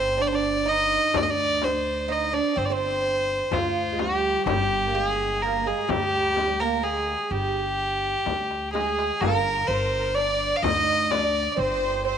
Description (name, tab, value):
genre	Arabic maqam ensemble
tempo	126 BPM (eighths)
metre	10/8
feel	straight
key	G maqam kurd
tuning	A4 = 438 Hz
part	rich violin	melody	0.0-12.2 s	F4 to F5	-23 LUFS	equal	tape echo
part	oud	second line	0.0-12.2 s	F3 to Eb4	-30 LUFS	right 12 dB	none
part	upright bass	bass	0.0-12.2 s	G1 to D2	-32 LUFS	left 1 dB	none
part	darbuka	percussion	1.1-11.5 s	none	-36 LUFS	left 7 dB	none
part	frame drum	percussion	1.1-11.3 s	none	-30 LUFS	left 13 dB	none
part	clear studio violin section	second line	8.7-12.2 s	Ab4 to Eb5	-30 LUFS	equal	none
room	light reverb, small room ambience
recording	1960s-style stereo with parts hard left and right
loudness	-22 LUFS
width	side -8 dB against mid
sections	0.0-9.2 A section; 9.2-12.2 B section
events	drum fill 8.3-9.2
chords	none